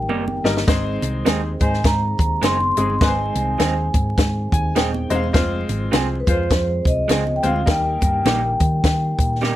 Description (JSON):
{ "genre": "uptempo 1960s-style soul", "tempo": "103 BPM", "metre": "4/4", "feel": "swing 60% on 8ths", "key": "Ab major", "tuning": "A4 = 440 Hz", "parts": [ { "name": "vibraphone with medium mallets", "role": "melody", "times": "0.0-9.4 s", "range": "Cb5 to C6", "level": "-23 LUFS", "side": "equal", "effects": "none" }, { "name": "mellow tonewheel organ", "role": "sustained chords", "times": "0.0-9.6 s", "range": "Eb3 to C4", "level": "-31 LUFS", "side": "right 1 dB", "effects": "slow rotary speaker, chorus vibrato" }, { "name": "hollow-body short-scale picked electric bass", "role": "bass", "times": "0.0-9.5 s", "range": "Eb1 to Eb3", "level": "-23 LUFS", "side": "equal", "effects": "none" }, { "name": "electric guitar through a small old amp", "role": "stabs", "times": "0.1-9.6 s", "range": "G3 to Ab4", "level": "-24 LUFS", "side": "right 6 dB", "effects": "none" }, { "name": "congas", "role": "percussion", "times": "0.1-9.6 s", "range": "none", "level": "-30 LUFS", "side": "right 4 dB", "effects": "none" }, { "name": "bright baby grand piano", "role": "accompaniment", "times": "0.4-8.5 s", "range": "G3 to Ab5", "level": "-24 LUFS", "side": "left 2 dB", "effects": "none" }, { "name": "compact cocktail drum kit", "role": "drums", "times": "0.5-9.6 s", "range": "hi-hat, kick drum, snare drum", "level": "-19 LUFS", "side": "equal", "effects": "none" }, { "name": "dark horn section", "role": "second line", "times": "1.6-2.0, 6.3-6.7 s", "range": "Ab3 to C5", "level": "-27 LUFS", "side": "left 2 dB", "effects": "none" } ], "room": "light reverb", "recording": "vinyl crackle", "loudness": "-17 LUFS", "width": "side -14 dB against mid", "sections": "0.0-9.6 A section", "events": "drum fill 0.0-0.7; grand piano fill 4.2-5.3", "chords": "0.0 Eb; 0.7 Ab; 5.3 Fm; 7.7 Eb" }